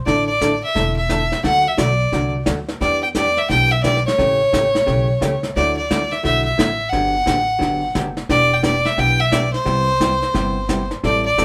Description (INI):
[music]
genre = country, western swing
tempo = 175 BPM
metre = 4/4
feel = swing 64% on 8ths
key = unclear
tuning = A4 = 440 Hz
[part]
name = clear fiddle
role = melody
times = 0.1-11.4 s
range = C5 to G5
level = -20 LUFS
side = equal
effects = none
[part]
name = vintage hollow-body jazz guitar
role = accompaniment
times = 0.1-11.4 s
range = C3 to A4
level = -26 LUFS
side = equal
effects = none
[part]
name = upright bass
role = bass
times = 0.1-11.4 s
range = E1 to E2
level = -26 LUFS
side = equal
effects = none
[part]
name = vintage brush drum kit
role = drums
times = 0.1-11.4 s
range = brushed snare drum, hi-hat, kick drum, snare drum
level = -25 LUFS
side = equal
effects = none
[sound]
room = moderate small room ambience, RT60 0.5 s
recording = band playing live in one room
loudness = -18 LUFS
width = mono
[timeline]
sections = 0.0-11.4 A section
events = none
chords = 0.1 Asus4; 1.4 D; 2.8 Em7; 4.2 A7; 5.6 Dadd9; 6.9 Gmaj7; 8.3 Em7; 9.7 Cmaj7